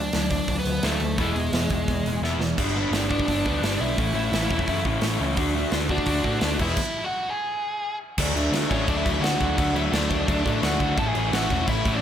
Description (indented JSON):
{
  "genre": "punk rock",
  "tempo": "171 BPM",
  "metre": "4/4",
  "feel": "straight",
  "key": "unclear",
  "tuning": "A4 = 440 Hz",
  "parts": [
    { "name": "biting lead guitar", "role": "melody", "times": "0.0-12.0 s", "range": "G#3 to A5", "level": "-28 LUFS", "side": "equal", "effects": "overdrive, tape echo" },
    { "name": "raw garage guitar", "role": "riff", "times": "0.0-12.0 s", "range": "G2 to F#4", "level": "-25 LUFS", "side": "left 1 dB", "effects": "overdrive" },
    { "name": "overdriven picked electric bass", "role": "bass", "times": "0.0-12.0 s", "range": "E1 to A2", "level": "-28 LUFS", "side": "equal", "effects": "none" },
    { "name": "big rock drum kit", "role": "drums", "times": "0.1-11.9 s", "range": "crash cymbal, hi-hat, kick drum, snare drum", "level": "-28 LUFS", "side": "right 1 dB", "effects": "none" }
  ],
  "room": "light reverb",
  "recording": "none",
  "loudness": "-21 LUFS",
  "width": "side -9 dB against mid",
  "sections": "0.0-2.6 A section; 2.6-8.2 B section; 8.2-12.0 C section",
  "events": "drum fill 2.2-2.6; stop 6.8-8.2",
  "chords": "0.0 D; 1.2 E; 2.6 G; 4.0 A; 5.4 D; 6.6 E; 8.2 D; 11.0 A",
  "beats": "0.12 0.47 0.82 | 1.17 1.52 1.88 2.23 | 2.58 2.93 3.28 3.63 | 3.98 4.33 4.68 5.03 | 5.38 5.73 6.08 6.43 | 6.78 7.13 7.48 7.83 | 8.18 8.53 8.88 9.23 | 9.58 9.93 10.28 10.63 | 10.98 11.33 11.68"
}